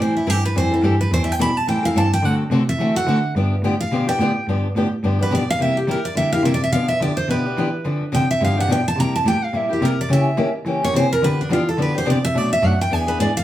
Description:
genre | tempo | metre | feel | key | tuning
acoustic string swing (jazz manouche) | 214 BPM | 4/4 | swing 56% on 8ths | G mixolydian | A4 = 440 Hz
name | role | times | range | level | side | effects
picked steel-string acoustic guitar | melody | 0.0-13.4 s | D4 to B5 | -21 LUFS | right 1 dB | plate reverb
picked old ladder-braced acoustic guitar | accompaniment | 0.0-13.3 s | B2 to A4 | -22 LUFS | left 2 dB | none
rich cello | bass | 0.0-13.4 s | E2 to E3 | -21 LUFS | equal | none
room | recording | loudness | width
wet studio reverb, RT60 0.5 s | heard from further back in the room | -17 LUFS | side -13 dB against mid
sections
0.0-4.5 A section; 4.5-13.4 A section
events
steel-string acoustic guitar solo 0.0-13.4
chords
0.0 Am7; 2.2 D7; 3.4 G7; 5.6 C7; 6.7 G7; 7.9 Dm7; 8.4 G7; 9.0 C7; 10.1 C#dim7; 11.2 G7; 12.4 Bm7; 12.9 E7

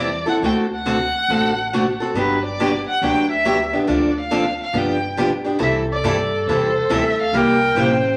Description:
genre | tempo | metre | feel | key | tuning
acoustic string swing (jazz manouche) | 139 BPM | 4/4 | swing 64% on 8ths | G major | A4 = 440 Hz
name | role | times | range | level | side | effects
warm violin | melody | 0.0-8.2 s | B4 to G5 | -24 LUFS | equal | none
picked steel-string acoustic guitar | accompaniment | 0.0-7.9 s | C3 to A4 | -22 LUFS | equal | none
upright bass | bass | 0.0-8.2 s | G1 to G2 | -32 LUFS | equal | none
warm clarinet | second line | 5.6-8.2 s | A4 to C5 | -23 LUFS | equal | none
room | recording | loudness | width
wet large studio reverb, RT60 0.9 s | vinyl crackle | -19 LUFS | mono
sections
0.0-5.6 A section; 5.6-8.2 B section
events
none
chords
0.4 D7; 2.1 Gmaj7; 3.9 Dm7; 4.7 G7; 5.6 C6; 7.3 C7

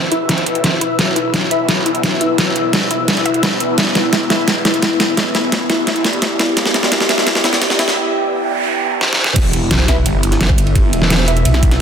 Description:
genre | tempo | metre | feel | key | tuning
dark technical drum and bass | 172 BPM | 4/4 | straight | E minor | A4 = 440 Hz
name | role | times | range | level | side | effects
deep dark ambient pad | sustained chords | 0.6-11.8 s | B3 to E5 | -23 LUFS | right 1 dB | chorus, built-in reverb, sidechain pumping
phased detuned saw bass | bass | 0.0-11.4 s | E1 to D2 | -22 LUFS | equal | phaser, overdrive, high-pass filter
ethereal airy pad | texture | 0.0-11.8 s | E4 to E6 | -22 LUFS | left 2 dB | ensemble chorus, built-in reverb, sidechain pumping
analog pluck | arpeggios | 0.1-7.9 s | E4 to E5 | -23 LUFS | left 3 dB | chorus, sidechain pumping, tape echo
filtered dub chord stab | stabs | 0.1-1.6, 4.3-7.2, 9.9-11.3 s | E4 to E5 | -25 LUFS | equal | none
dubstep drum kit | drums | 0.1-11.8 s | crash cymbal, hi-hat, snare drum | -16 LUFS | equal | none
electronic kick drum | drums | 0.3-11.7 s | none | -18 LUFS | equal | none
riser, noise sweep and impact | sound effects | 5.6-10.8 s | none | -25 LUFS | right 2 dB | none
jungle sampler-style drum kit | drums | 9.4-11.8 s | hi-hat, ride cymbal, snare drum | -28 LUFS | right 2 dB | high-pass filter on cymbals, high-pass filter on snare, high-pass filter on hats
growling FM bass | bass | 9.7-11.8 s | B1 | -14 LUFS | equal | none
room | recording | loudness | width
moderate lush hall reverb, RT60 2.2 s | dense, heavily limited modern master, high-pass filter | -12 LUFS | side -7 dB against mid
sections
0.0-9.4 A section; 9.4-11.8 B section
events
build-up 0.0-9.4; drum fill 0.0-8.0, 9.0-9.4; filter sweep on ambient pad 0.0-9.4; filter sweep on synth arpeggio sound 0.0-9.4; break 8.0-9.4; noise sweep 8.0-9.4; drop 9.4-11.8; impact 9.4-10.8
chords
0.0 E5

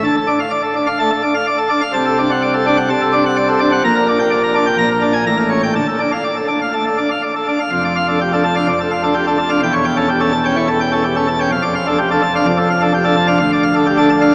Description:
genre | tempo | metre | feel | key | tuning
classical, organ toccata | 126 BPM | 4/4 | straight | D minor | A4 = 439 Hz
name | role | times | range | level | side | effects
pipe organ, plenum | solo | 0.0-14.3 s | D1 to Bb5 | -15 LUFS | equal | none
room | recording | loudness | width
wet cathedral reverb, RT60 6.0 s | small speaker sound | -16 LUFS | mono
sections
0.0-7.7 A section; 7.7-14.3 B section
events
none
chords
0.0 Dm; 1.9 D7/C; 3.8 Gm/Bb; 4.8 Bb7; 5.3 A7b9; 5.7 Dm; 7.7 Dm/F; 9.6 A7/E; 11.5 Dm/F; 13.4 Dm

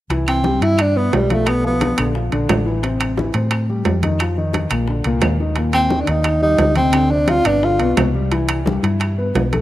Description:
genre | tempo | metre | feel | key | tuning
Afro-Cuban jazz | 175 BPM | 4/4 | straight | unclear | A4 = 440 Hz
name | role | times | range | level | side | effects
warm grand piano | accompaniment | 0.1-9.6 s | Bb2 to E5 | -23 LUFS | left 2 dB | none
hollow-body short-scale fingered electric bass | bass | 0.1-9.6 s | G1 to A2 | -20 LUFS | equal | none
bongos | percussion | 0.1-9.6 s | none | -34 LUFS | left 6 dB | none
congas | percussion | 0.1-9.6 s | none | -27 LUFS | left 2 dB | none
timbales | percussion | 0.1-9.6 s | none | -23 LUFS | right 4 dB | none
breathy tenor saxophone | melody | 0.3-2.1, 5.7-8.0 s | G3 to F4 | -18 LUFS | equal | none
claves | percussion | 0.3-9.2 s | none | -33 LUFS | left 2 dB | none
room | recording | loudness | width
moderate plate reverb, RT60 3.2 s | rough home demo mix, lossy compression artefacts | -15 LUFS | side -14 dB against mid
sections
0.1-9.6 A section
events
none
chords
0.1 Cmaj7; 1.5 Bm7b5; 2.2 Bb; 2.8 Am7; 4.2 Bbsus4; 4.9 Bb; 5.6 Eb6; 6.9 Gadd11; 8.3 Cmaj7

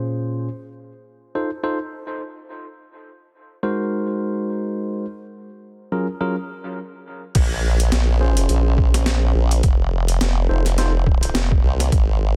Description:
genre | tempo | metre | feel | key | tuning
glitch hop | 105 BPM | 4/4 | swing 57% on 16ths | Bb minor | A4 = 439 Hz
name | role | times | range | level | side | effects
tine electric piano | stabs | 0.0-10.9 s | Bb2 to C5 | -28 LUFS | equal | sidechain pumping, dub echo
boom bap sampler-style drum kit | drums | 7.3-12.1 s | crash cymbal, hi-hat, snare drum | -28 LUFS | equal | overdrive, low-pass filter on hats, low-pass filter on cymbals, low-pass filter on snare, low-pass filter on room
formant-sweep wobble bass | bass | 7.4-12.4 s | F1 to C2 | -20 LUFS | equal | chorus, tube saturation
electronic kick drum | drums | 7.4-12.1 s | none | -20 LUFS | equal | overdrive
room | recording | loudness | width
digital ambience | dense, heavily limited modern master | -20 LUFS | mono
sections
0.0-7.4 A section; 7.4-12.4 B section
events
drop 7.4-12.4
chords
0.5 F7; 2.8 Ab7; 5.1 Gbmaj7; 7.4 Bbm7; 9.6 F7

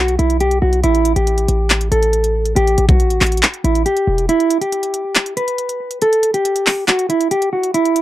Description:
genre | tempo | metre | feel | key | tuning
hip hop, trap | 139 BPM | 4/4 | half-time | unclear | A4 = 440 Hz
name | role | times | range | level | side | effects
mellow electric guitar | melody | 0.0-8.0 s | E4 to B4 | -16 LUFS | right 1 dB | none
hard-hitting 808-style bass | bass | 0.0-4.3 s | E1 to B1 | -17 LUFS | equal | none
trap drum kit | drums | 0.1-8.0 s | handclaps, hi-hat, kick drum | -16 LUFS | equal | none
room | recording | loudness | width
little or no reverb | dry, gritty hardware recording | -13 LUFS | side -14 dB against mid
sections
0.0-8.0 A section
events
kick muted 4.3-8.0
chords
0.0 B5; 0.8 A5; 4.3 N.C.

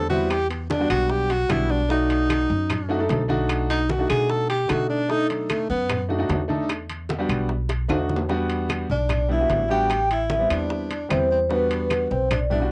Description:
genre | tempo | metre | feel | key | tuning
Afro-Cuban jazz | 150 BPM | 4/4 | straight | E minor | A4 = 440 Hz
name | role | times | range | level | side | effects
warm tenor saxophone | second line | 0.0-6.1, 8.9-12.7 s | F#3 to A4 | -27 LUFS | equal | cassette tape
upright bass | bass | 0.0-12.7 s | A1 to B2 | -29 LUFS | equal | none
warm concert grand piano | accompaniment | 0.1-12.7 s | G3 to D5 | -29 LUFS | equal | cassette tape
congas | percussion | 0.1-12.7 s | none | -34 LUFS | equal | none
bongos | percussion | 0.3-12.5 s | none | -36 LUFS | equal | none
claves | percussion | 0.3-12.5 s | none | -36 LUFS | equal | none
timbales | percussion | 0.3-12.5 s | none | -35 LUFS | equal | none
vibraphone with soft mallets | melody | 8.9-12.7 s | B4 to G5 | -25 LUFS | equal | cassette tape, plate reverb
room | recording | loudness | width
light reverb | home recording on cassette, nothing above 10.8 kHz | -23 LUFS | mono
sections
0.0-8.3 A section; 8.3-12.7 B section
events
tenor saxophone solo 0.0-8.3; drum fill 1.3-1.9, 7.7-8.3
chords
0.3 Em9; 1.9 B7#9; 6.7 Em9; 7.5 B7#9; 8.3 Em9; 9.9 Am9; 11.5 Em9

